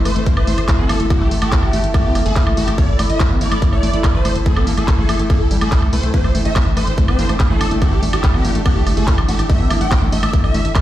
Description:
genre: psychedelic trance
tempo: 143 BPM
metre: 4/4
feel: straight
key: A phrygian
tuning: A4 = 440 Hz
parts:
  - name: overtone-sweeping drone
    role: sustained chords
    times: 0.1-10.8 s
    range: A3 to E4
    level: -27 LUFS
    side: left 1 dB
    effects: chorus, built-in reverb, sidechain pumping
  - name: ethereal airy pad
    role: texture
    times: 0.0-10.8 s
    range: E4 to C6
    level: -27 LUFS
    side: equal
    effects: ensemble chorus, built-in reverb, sidechain pumping
  - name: swarming rave lead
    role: melody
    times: 0.1-10.7 s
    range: G4 to G5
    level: -25 LUFS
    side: equal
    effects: chorus, phaser, cassette tape, sidechain pumping, tape echo
  - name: overdriven acid bass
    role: riff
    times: 0.1-10.8 s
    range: G3 to C4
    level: -23 LUFS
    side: equal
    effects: distortion, auto-pan, cassette tape, sidechain pumping, ping-pong delay
  - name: tight sequencer bass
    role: bass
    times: 0.1-10.7 s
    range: G1 to C2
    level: -18 LUFS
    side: equal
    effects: none
  - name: drum and bass drum kit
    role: drums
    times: 0.1-10.8 s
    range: handclaps, hi-hat, woodblock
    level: -24 LUFS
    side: right 1 dB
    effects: none
  - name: electronic kick drum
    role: drums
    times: 0.3-10.8 s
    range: none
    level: -15 LUFS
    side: equal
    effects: none
room: light reverb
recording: played on a big sound system in a bare room, stone room reverb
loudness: -13 LUFS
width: side -13 dB against mid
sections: 0.0-10.8 A section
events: none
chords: 0.0 A5

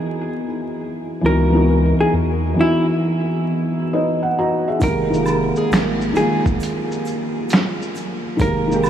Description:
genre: lo-fi hip hop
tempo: 67 BPM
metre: 4/4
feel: swing 66% on 16ths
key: unclear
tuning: A4 = 440 Hz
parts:
  - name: felt-muted upright piano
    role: accompaniment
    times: 0.0-8.9 s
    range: Eb3 to Bb5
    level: -19 LUFS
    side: equal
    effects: cassette tape, low-pass filter
  - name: soft dub sub bass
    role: bass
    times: 1.2-8.9 s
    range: F1 to Fb2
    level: -22 LUFS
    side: equal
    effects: none
  - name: hollow-body jazz guitar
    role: melody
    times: 1.3-8.9 s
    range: Fb4 to Bb4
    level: -24 LUFS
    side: right 1 dB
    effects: low-pass filter, tape echo
  - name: lo-fi sampler-style drum kit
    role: drums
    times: 4.8-8.9 s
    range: finger snaps, hi-hat, kick drum, shaker, snare drum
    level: -21 LUFS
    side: right 1 dB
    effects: none
  - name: tube shaker and woodblock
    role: percussion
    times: 4.8-8.9 s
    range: none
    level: -32 LUFS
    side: right 5 dB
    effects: none
room: wet huge ambient reverb, RT60 8.0 s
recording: dreamy mix soaked in reverb, vinyl crackle, small room ambience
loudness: -16 LUFS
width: side -10 dB against mid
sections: 0.0-8.9 A section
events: none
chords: 0.0 Dbm11; 4.8 Fm11

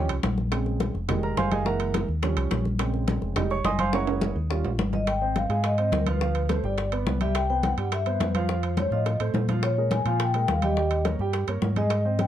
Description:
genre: Afro-Cuban jazz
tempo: 211 BPM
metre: 4/4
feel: straight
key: unclear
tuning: A4 = 440 Hz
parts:
  - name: warm grand piano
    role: accompaniment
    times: 0.0-12.3 s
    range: Db3 to Eb6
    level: -29 LUFS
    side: right 5 dB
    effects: none
  - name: fingered electric bass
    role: bass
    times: 0.0-12.3 s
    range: F1 to Bb2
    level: -27 LUFS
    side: equal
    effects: none
  - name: bongos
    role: percussion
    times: 0.1-12.3 s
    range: none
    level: -34 LUFS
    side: left 8 dB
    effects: none
  - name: congas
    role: percussion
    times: 0.1-12.3 s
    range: none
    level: -31 LUFS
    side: left 2 dB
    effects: none
  - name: timbales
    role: percussion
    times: 0.1-12.3 s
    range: none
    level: -34 LUFS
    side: right 7 dB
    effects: none
  - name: vibraphone with medium mallets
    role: melody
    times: 4.9-12.3 s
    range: Bb4 to Ab5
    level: -28 LUFS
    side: left 2 dB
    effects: none
room: light reverb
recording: dark, warm production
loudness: -23 LUFS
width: side -11 dB against mid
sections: 0.0-5.1 A section; 5.1-12.3 B section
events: grand piano solo 0.0-5.1; drum fill 3.9-5.1, 9.1-9.6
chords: 0.0 Eb7 (rootless); 0.5 Bbm7; 1.1 Fm7; 1.7 Gb7; 2.2 Eb7; 2.8 Bbm7; 3.4 Fm7; 3.9 Gb7; 4.5 Eb7; 5.1 Abmaj7; 6.2 Dm7; 6.8 G; 7.4 Cmaj7; 8.5 F7; 9.6 Bbm7; 10.8 Eb7

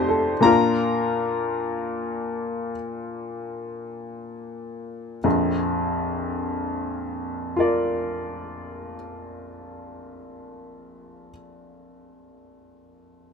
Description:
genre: classical, romantic nocturne for solo piano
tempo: 23-27 BPM (dotted quarters)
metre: 12/8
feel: rubato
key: Bb major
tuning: A4 = 438 Hz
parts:
  - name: clear upright piano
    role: solo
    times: 0.0-13.3 s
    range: Bb1 to D6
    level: -23 LUFS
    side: left 2 dB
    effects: none
room: light reverb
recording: minimal, uncompressed stereo recording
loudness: -22 LUFS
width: side -5 dB against mid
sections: 0.0-5.2 A section; 5.2-13.3 B section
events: slowing down 0.0-5.2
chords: 0.5 Bb

